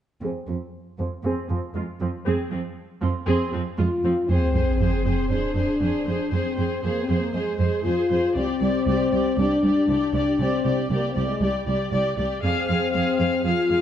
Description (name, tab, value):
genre	cinematic, hybrid orchestral and electronic film score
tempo	118 BPM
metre	4/4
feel	straight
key	F dorian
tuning	A4 = 441 Hz
part	warm studio viola section	accompaniment	0.2-13.8 s	F3 to F5	-27 LUFS	equal	low-pass filter
part	warm symphonic cello section	bass	0.2-13.8 s	C2 to F2	-26 LUFS	right 2 dB	none
part	dark French horn section	sustained chords	3.8-13.8 s	G3 to F4	-24 LUFS	left 3 dB	low-pass filter
part	sub drop	sound effects	4.3-6.3 s	none	-25 LUFS	equal	none
room	moderate recital hall reverb, RT60 1.5 s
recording	dark, warm production, nothing above 10.9 kHz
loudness	-21 LUFS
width	side -10 dB against mid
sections	0.2-4.3 A section; 4.3-13.8 B section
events	filter sweep 0.2-4.3; impact 4.3-6.3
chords	0.2 Fm; 8.4 Csus2; 12.4 Fm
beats	| 0.22 0.73 1.24 1.75 | 2.26 2.77 3.27 3.78 | 4.29 4.80 5.31 5.82 | 6.33 6.83 7.34 7.85 | 8.36 8.87 9.38 9.88 | 10.39 10.90 11.41 11.92 | 12.43 12.94 13.44